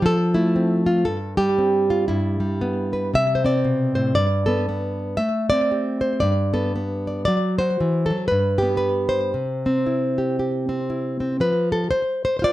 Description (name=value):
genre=folk, solo fingerstyle acoustic guitar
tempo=116 BPM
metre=4/4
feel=swing 61% on 8ths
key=unclear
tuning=A4 = 441 Hz
part: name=nylon-string guitar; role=solo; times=0.0-12.5 s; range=G2 to E5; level=-19 LUFS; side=equal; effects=slapback echo
room=light reverb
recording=dry, close 1970s-style studio recording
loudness=-19 LUFS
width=side -15 dB against mid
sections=0.0-11.4 A section; 11.4-12.5 B section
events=none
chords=0.0 F; 1.1 Gsus4; 2.1 G; 3.1 Amadd11; 4.2 Gadd9; 5.2 Am7; 6.2 Gadd9; 7.3 D9; 8.3 G; 9.3 C; 11.4 F5